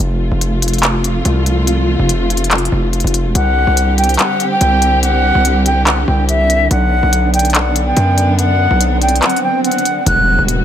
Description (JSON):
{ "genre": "hip hop, trap", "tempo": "143 BPM", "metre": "4/4", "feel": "half-time", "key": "unclear", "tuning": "A4 = 441 Hz", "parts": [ { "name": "dark symphonic string section", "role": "sustained chords", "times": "0.0-10.6 s", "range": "C3 to G4", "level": "-18 LUFS", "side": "right 1 dB", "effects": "none" }, { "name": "distorted 808-style bass", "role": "bass", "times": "0.0-10.6 s", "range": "E1 to F#2", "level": "-15 LUFS", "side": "equal", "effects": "distortion" }, { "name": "trap drum kit", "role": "drums", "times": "0.4-10.6 s", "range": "handclaps, hi-hat", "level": "-17 LUFS", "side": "left 1 dB", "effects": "none" }, { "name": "concert flute", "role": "melody", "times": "3.4-10.4 s", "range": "E5 to F#6", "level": "-15 LUFS", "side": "equal", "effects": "ping-pong delay" }, { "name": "swell and impact", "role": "sound effects", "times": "8.8-10.6 s", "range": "none", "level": "-20 LUFS", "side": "equal", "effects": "none" } ], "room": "light reverb", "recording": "none", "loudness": "-11 LUFS", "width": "side -10 dB against mid", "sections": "0.0-10.1 A section", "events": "break 0.0-3.4; swell 8.8-10.1; kick muted 9.2-10.1; impact 10.1-10.6", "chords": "0.0 F; 3.4 Csus2; 6.7 Bm; 10.1 Emadd9" }